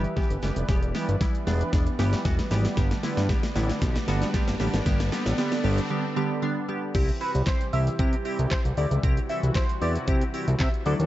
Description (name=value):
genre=dance-pop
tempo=115 BPM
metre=4/4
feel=straight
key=unclear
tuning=A4 = 441 Hz
part: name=glassy wavetable pluck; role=accompaniment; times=0.0-11.1 s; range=D3 to A4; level=-30 LUFS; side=right 1 dB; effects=chorus, sidechain pumping, low-pass filter
part: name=warm analog pad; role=sustained chords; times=0.0-11.1 s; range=C3 to E5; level=-34 LUFS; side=equal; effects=chorus, tremolo, sidechain pumping, low-pass filter
part: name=fat analog bass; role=bass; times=0.0-11.1 s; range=E1 to C3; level=-25 LUFS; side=equal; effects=sidechain pumping
part: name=pop drum kit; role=drums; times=0.0-11.1 s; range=crash cymbal, handclaps, hi-hat, kick drum, shaker, snare drum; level=-26 LUFS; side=equal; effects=none
part: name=riser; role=sound effects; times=1.4-5.9 s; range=none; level=-37 LUFS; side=right 1 dB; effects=none
part: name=octave-doubled lead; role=melody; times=7.2-11.0 s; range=B4 to E5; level=-32 LUFS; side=equal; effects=chorus, phaser, digital delay
room=light reverb, digital ambience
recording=worn, warbling old tape, cassette tape, warbly pitch drift, nothing above 7.9 kHz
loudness=-23 LUFS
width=side -14 dB against mid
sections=0.0-6.9 A section; 6.9-11.1 B section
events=build-up 0.0-6.9; drum fill 0.0-5.9; riser 1.4-6.9; break 5.9-6.9; drop 6.9-11.1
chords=0.0 Em; 2.8 G; 6.9 C